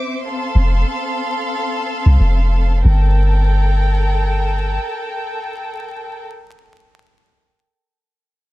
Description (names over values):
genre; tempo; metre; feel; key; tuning
trip hop; 91 BPM; 4/4; swing 59% on 16ths; G minor; A4 = 438 Hz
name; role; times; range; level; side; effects
rich studio violin section; sustained chords; 0.0-6.2 s; A4 to D6; -23 LUFS; left 1 dB; none
flickering grainy texture; texture; 0.0-2.8 s; C4 to C5; -30 LUFS; equal; built-in reverb
soft 808-style bass; bass; 0.5-4.8 s; F1 to C2; -13 LUFS; equal; none
room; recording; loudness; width
small room ambience; vinyl crackle; -15 LUFS; side -17 dB against mid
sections
0.0-2.8 A section; 2.8-5.5 B section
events
filter sweep on 808-style bass 0.0-2.8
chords
0.2 F; 2.8 Gmadd9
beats
| 0.20 0.86 1.52 2.18 | 2.84 3.50 4.16 4.82